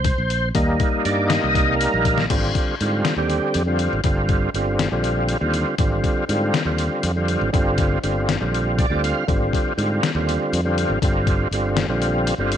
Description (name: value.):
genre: progressive instrumental, band music in an uneven meter.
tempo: 240 BPM (eighths).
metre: 7/8.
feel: straight.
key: unclear.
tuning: A4 = 441 Hz.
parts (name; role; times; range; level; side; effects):
overdriven tonewheel organ; accompaniment; 0.0-12.6 s; D3 to F5; -21 LUFS; right 1 dB; chorus vibrato, slow rotary speaker.
modern bright fingered electric bass; bass; 0.0-12.6 s; G1 to Ab2; -23 LUFS; equal; none.
dusty soul sampler-style drum kit; drums; 0.0-12.6 s; crash cymbal, hi-hat, kick drum, snare drum; -23 LUFS; left 2 dB; overdrive.
room: little or no reverb.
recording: 1960s-style stereo, nothing above 10.3 kHz.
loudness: -18 LUFS.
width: side -9 dB against mid.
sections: 0.0-2.3 A section; 2.3-12.6 B section.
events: tonewheel organ solo 0.0-2.3; drum fill 2.0; tonewheel organ fill 8.5-9.3.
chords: 0.0 Eb; 2.3 Abmaj7; 4.0 Gm7; 5.8 Abmaj7; 7.5 Gm7; 9.3 Abmaj7; 11.0 Gm7.